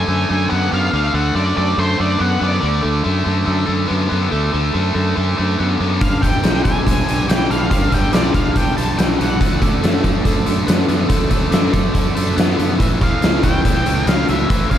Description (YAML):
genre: blues rock power trio and southern rock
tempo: 142 BPM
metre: 4/4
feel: straight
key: D major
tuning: A4 = 440 Hz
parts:
  - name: octave-fuzz lead guitar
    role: melody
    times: 0.0-2.8, 6.0-9.6, 12.8-14.8 s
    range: C5 to A5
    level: -22 LUFS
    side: equal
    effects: distortion
  - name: biting overdriven guitar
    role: riff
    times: 0.0-14.8 s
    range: G2 to B3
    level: -20 LUFS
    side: equal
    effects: slapback echo
  - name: growling fingered electric bass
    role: bass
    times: 0.0-14.8 s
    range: G1 to F#2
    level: -20 LUFS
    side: equal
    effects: overdrive
  - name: bright tonewheel organ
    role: sustained chords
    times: 6.0-14.8 s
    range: E3 to B4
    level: -30 LUFS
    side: right 4 dB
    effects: none
  - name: oversized low-tuned drum kit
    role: drums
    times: 6.0-14.8 s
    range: hi-hat, kick drum, snare drum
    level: -16 LUFS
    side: equal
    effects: none
room: moderate recital hall reverb, RT60 1.5 s, small room ambience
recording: big arena sound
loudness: -14 LUFS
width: side -10 dB against mid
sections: 0.0-14.8 A section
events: none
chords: 0.0 D; 6.0 G; 9.4 D; 12.8 A